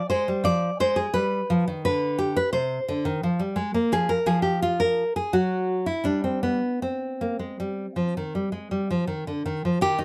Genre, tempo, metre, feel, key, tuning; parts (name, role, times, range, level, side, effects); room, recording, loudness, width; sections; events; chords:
classical, baroque-style dance for nylon-string guitar; 78-88 BPM; 4/4; rubato; C minor; A4 = 439 Hz
nylon-string guitar; solo; 0.0-10.0 s; C3 to D5; -25 LUFS; equal
light reverb; -25 LUFS; mono
0.0-9.8 A section
0.0 Fm69; 1.1 G; 2.5 Ab/C; 3.9 N.C.; 6.8 Cm